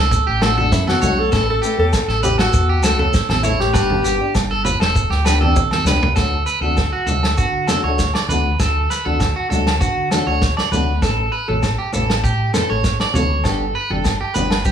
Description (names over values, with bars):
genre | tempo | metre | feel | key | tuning
highlife guitar band | 99 BPM | 4/4 | straight | D major | A4 = 439 Hz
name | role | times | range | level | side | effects
electric guitar at the edge of break-up | arpeggios | 0.0-14.7 s | F#4 to D5 | -21 LUFS | right 5 dB | tape echo
fingered electric bass | bass | 0.0-14.7 s | E1 to D3 | -20 LUFS | equal | none
vintage drum kit | drums | 0.1-14.7 s | kick drum, snare drum, toms | -21 LUFS | equal | none
shekere | percussion | 0.1-14.7 s | none | -25 LUFS | left 2 dB | none
nylon-string guitar | accompaniment | 0.4-14.6 s | E3 to A4 | -24 LUFS | left 7 dB | none
agogo bells | percussion | 0.4-14.7 s | none | -29 LUFS | left 4 dB | none
congas | percussion | 0.6-14.5 s | none | -24 LUFS | right 2 dB | none
breathy alto saxophone | melody | 0.7-4.5 s | E4 to A4 | -20 LUFS | left 2 dB | none
room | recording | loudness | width
light reverb | small room ambience | -15 LUFS | side -8 dB against mid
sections
0.0-6.2 A section; 6.2-14.7 B section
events
drum fill 5.6-6.2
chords
0.0 D; 1.3 A; 3.7 G; 6.2 D; 11.0 A; 13.4 G